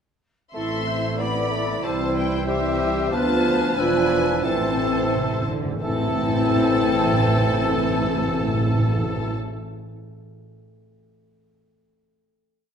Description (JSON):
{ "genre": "quick classical-period movement for symphony orchestra", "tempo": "86-95 BPM", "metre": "2/4", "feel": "straight", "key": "A minor", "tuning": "A4 = 440 Hz", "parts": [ { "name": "rich studio violin section", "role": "melody", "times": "0.5-9.3 s", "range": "E5 to C6", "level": "-30 LUFS", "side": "left 4 dB", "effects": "none" }, { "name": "warm clarinet", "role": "second line", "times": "0.5-9.3 s", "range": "C4 to G4", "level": "-30 LUFS", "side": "left 3 dB", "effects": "none" }, { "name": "warm studio violin section", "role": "second line", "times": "0.5-9.3 s", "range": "G4 to E5", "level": "-31 LUFS", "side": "left 2 dB", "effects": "none" }, { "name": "warm bassoon", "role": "accompaniment", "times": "0.5-9.3 s", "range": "E3 to B3", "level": "-28 LUFS", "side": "right 3 dB", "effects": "none" }, { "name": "warm studio viola section", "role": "accompaniment", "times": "0.5-9.3 s", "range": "A3 to F4", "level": "-27 LUFS", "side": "right 2 dB", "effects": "none" }, { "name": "rich chamber double bass section", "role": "bass", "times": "0.5-9.3 s", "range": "E1 to D2", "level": "-30 LUFS", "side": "right 2 dB", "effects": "none" }, { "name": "clear oboe", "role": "second line", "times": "0.6-9.3 s", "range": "A4 to D5", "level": "-32 LUFS", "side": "right 1 dB", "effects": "none" }, { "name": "mellow hollow silver concert flute", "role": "second line", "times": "0.6-9.3 s", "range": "D6 to F6", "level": "-33 LUFS", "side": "equal", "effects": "none" }, { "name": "mellow French horn section", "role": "sustained chords", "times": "0.6-9.3 s", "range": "E3 to D4", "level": "-29 LUFS", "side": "left 6 dB", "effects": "none" }, { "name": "warm studio cello section", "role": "bass", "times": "0.6-9.3 s", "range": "C2 to D3", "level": "-31 LUFS", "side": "right 4 dB", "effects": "none" }, { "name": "timpani", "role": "percussion", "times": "4.4-9.3 s", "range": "A2", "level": "-26 LUFS", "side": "right 1 dB", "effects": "none" } ], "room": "wet scoring stage reverb, RT60 1.6 s", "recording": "minimal, uncompressed stereo recording", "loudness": "-19 LUFS", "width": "side -7 dB against mid", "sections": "0.6-5.8 A section; 5.8-8.6 final chord", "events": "slowing down 2.5-5.8; timpani fill 4.5-5.8", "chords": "0.6 Am; 1.8 C; 3.1 Bdim/D; 3.8 E7b9; 4.5 Am" }